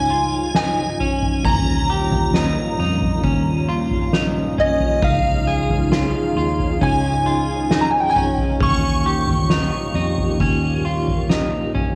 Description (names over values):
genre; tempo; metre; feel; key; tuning
dream pop; 67 BPM; 4/4; straight; unclear; A4 = 437 Hz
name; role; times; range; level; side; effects
shimmering bell with halo; melody; 0.0-11.3 s; Eb5 to Db6; -25 LUFS; equal; ensemble chorus, phaser, cassette tape, tape echo, plate reverb
string machine, cellos; sustained chords; 0.0-12.0 s; Db3 to Ab4; -26 LUFS; equal; ensemble chorus, cassette tape
clean electric guitar; arpeggios; 0.0-12.0 s; Db4 to Ab4; -28 LUFS; equal; lush chorus, cassette tape, tape echo, plate reverb
vintage muted picked electric bass; bass; 0.0-11.7 s; Db2 to F2; -26 LUFS; equal; none
soft-mallet drum kit; drums; 0.5-12.0 s; kick drum, snare drum, toms; -24 LUFS; equal; cassette tape
room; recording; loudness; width
moderate studio reverb, RT60 0.7 s; home recording on cassette; -19 LUFS; mono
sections
0.0-12.0 A section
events
none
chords
0.0 Dbadd9; 1.4 Eb7; 5.0 Dbadd9; 8.6 Eb7